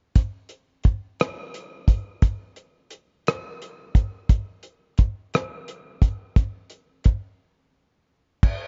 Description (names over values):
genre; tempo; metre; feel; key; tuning
R&B; 58 BPM (dotted quarters); 6/8; straight; none; none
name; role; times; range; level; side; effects
cloth-damped thuddy drum kit; drums; 0.2-8.6 s; crash cymbal, hi-hat, kick drum, rim click; -22 LUFS; equal; none
room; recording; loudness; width
little or no reverb; nothing above 7.5 kHz; -24 LUFS; mono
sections
0.2-8.4 A section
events
break 7.4-8.4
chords
none